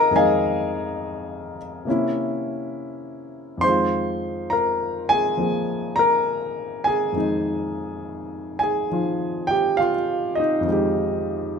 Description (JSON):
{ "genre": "solo jazz", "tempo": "68 BPM", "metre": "4/4", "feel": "swing 67% on 8ths", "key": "F minor", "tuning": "A4 = 441 Hz", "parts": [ { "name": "warm grand piano", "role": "solo", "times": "0.0-11.6 s", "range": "F2 to C6", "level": "-20 LUFS", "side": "equal", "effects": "none" } ], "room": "light reverb", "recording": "minimal, uncompressed stereo recording", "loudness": "-20 LUFS", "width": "side -6 dB against mid", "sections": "0.0-3.6 A section; 3.6-11.6 B section", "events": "grand piano solo 0.0-3.6", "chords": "0.0 Fm7; 1.9 C7b9; 3.6 Fm9" }